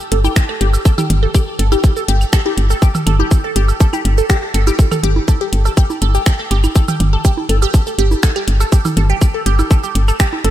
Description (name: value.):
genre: minimal techno.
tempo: 122 BPM.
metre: 4/4.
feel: straight.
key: unclear.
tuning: A4 = 442 Hz.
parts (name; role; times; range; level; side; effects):
garage drum kit; drums; 0.0-10.5 s; cabasa, finger snaps, hi-hat; -23 LUFS; equal; small room ambience.
resonant blip pluck; riff; 0.1-10.5 s; G4 to A4; -20 LUFS; equal; phaser, sidechain pumping, diffuse ambient delay.
woody FM bass; bass; 0.1-10.5 s; G1; -13 LUFS; equal; sidechain pumping.
electronic bongos, claves, woodblock and toms; percussion; 0.2-10.4 s; none; -22 LUFS; right 4 dB; small room ambience, tape echo.
electronic kick drum; drums; 0.4-10.3 s; none; -11 LUFS; equal; small room ambience.
room: light reverb.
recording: none.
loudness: -12 LUFS.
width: side -12 dB against mid.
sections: 0.0-10.5 A section.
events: none.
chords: none.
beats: 0.36 | 0.85 1.35 1.84 2.33 | 2.82 3.31 3.81 4.30 | 4.79 5.28 5.77 6.26 | 6.76 7.25 7.74 8.23 | 8.72 9.21 9.71 10.20.